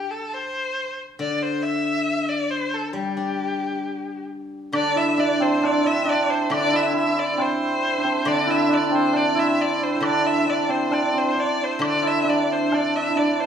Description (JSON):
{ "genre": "chinese traditional, Chinese chamber ensemble", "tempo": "68 BPM", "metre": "2/4", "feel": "rubato", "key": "unclear", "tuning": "A4 = 440 Hz", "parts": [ { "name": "bright erhu", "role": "melody", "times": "0.0-13.5 s", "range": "G4 to E5", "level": "-24 LUFS", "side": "left 2 dB", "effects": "none" }, { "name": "steel-string zither", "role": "accompaniment", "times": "0.0-13.5 s", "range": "D3 to D4", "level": "-27 LUFS", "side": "left 2 dB", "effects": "none" }, { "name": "hammered dulcimer", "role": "second line", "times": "4.7-13.5 s", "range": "C4 to E4", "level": "-21 LUFS", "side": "right 3 dB", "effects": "none" }, { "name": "woodblock", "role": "percussion", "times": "4.7-12.9 s", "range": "none", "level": "-33 LUFS", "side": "left 2 dB", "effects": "none" } ], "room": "wet recital hall reverb, RT60 1.6 s", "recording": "studio reverb", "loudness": "-19 LUFS", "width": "side -8 dB against mid", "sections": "0.0-4.7 A section; 4.7-13.5 B section", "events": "none", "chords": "none", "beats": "0.34 | 1.21 2.08 | 2.94 3.84 | 4.74 5.63 | 6.51 7.38 | 8.26 9.14 | 10.02 10.91 | 11.81 12.71" }